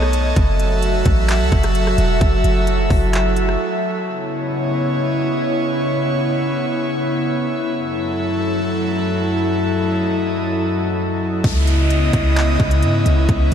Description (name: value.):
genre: hip hop, atmospheric cloud-rap.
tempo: 130 BPM.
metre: 4/4.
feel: half-time.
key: F# dorian.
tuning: A4 = 439 Hz.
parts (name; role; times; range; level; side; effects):
airy breathy pad; sustained chords; 0.0-13.5 s; F#2 to E5; -18 LUFS; equal; chorus, sidechain pumping.
warm 808-style bass; bass; 0.0-3.6, 11.4-13.5 s; E1 to G#2; -17 LUFS; equal; none.
trap drum kit; drums; 0.0-3.6, 11.4-13.5 s; handclaps, hi-hat, kick drum, rim click; -22 LUFS; equal; overdrive.
drifting glass-harmonics texture; texture; 0.0-11.4 s; A3 to E5; -30 LUFS; equal; chorus, built-in reverb.
downlifter; sound effects; 11.4-13.5 s; none; -27 LUFS; left 1 dB; none.
room: moderate huge ambient reverb, RT60 8.2 s.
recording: dreamy mix soaked in reverb.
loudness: -16 LUFS.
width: side -8 dB against mid.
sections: 0.0-4.1 A section; 4.1-11.4 B section; 11.4-13.5 C section.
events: break 3.6-4.1.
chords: 0.4 F#m7; 4.1 C#m9; 7.7 F#m7; 11.4 C#m9.